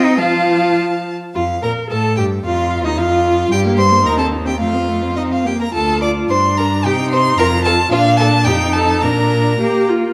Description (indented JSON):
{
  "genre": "quick classical-period movement for string quartet",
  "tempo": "101-113 BPM",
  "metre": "2/4",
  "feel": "rubato",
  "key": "Bb major",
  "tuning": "A4 = 439 Hz",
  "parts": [
    { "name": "clear violin", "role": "melody", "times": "0.0-9.9 s", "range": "Eb5 to D6", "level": "-21 LUFS", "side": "equal", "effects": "none" },
    { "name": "rich violin", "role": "second line", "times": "0.0-9.9 s", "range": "Eb4 to F5", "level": "-23 LUFS", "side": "equal", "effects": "none" },
    { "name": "rich viola", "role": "accompaniment", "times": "0.0-10.1 s", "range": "F3 to Bb4", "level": "-21 LUFS", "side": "equal", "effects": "none" },
    { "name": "clear cello", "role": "bass", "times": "0.0-10.1 s", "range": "D2 to F4", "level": "-21 LUFS", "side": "equal", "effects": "none" }
  ],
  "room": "wet recital hall reverb, RT60 1.4 s",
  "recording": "none",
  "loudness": "-16 LUFS",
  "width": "mono",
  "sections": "0.0-1.4 A section; 1.4-10.1 B section",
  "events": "none",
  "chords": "0.2 F; 1.4 Bb5/F; 1.9 Gsus2; 2.4 Ebsus2; 3.5 Gm; 4.1 Cm/Eb; 4.6 F; 5.7 Dm; 6.3 Gm; 6.8 Cm; 7.4 F; 7.9 Bb; 8.5 F7; 9.0 Bb"
}